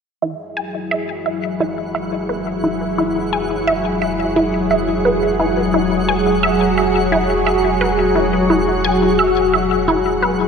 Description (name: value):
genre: ambient, sequencer-driven space music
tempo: 87 BPM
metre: 4/4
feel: straight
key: E major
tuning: A4 = 440 Hz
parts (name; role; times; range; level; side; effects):
- lush unison pad; sustained chords; 0.6-10.5 s; F#3 to G#4; -17 LUFS; equal; chorus, phaser
- resonant blip pluck; riff; 0.2-10.4 s; E4 to G#5; -20 LUFS; right 1 dB; phaser, ping-pong delay
- round analog bass; bass; 0.2-10.5 s; E1; -28 LUFS; equal; none
- twinkling granular texture; texture; 1.3-10.5 s; F#4 to F#5; -27 LUFS; left 2 dB; built-in reverb
room: wet plate reverb, RT60 3.0 s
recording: none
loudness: -15 LUFS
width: side -6 dB against mid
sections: 0.2-10.5 A section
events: fade-in on analog synth bass 0.2-10.5; fade-in on synth texture 0.2-10.5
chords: 0.2 Eadd9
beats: | 0.23 0.92 1.60 2.29 | 2.98 3.67 4.36 5.05 | 5.74 6.43 7.12 7.81 | 8.50 9.19 9.88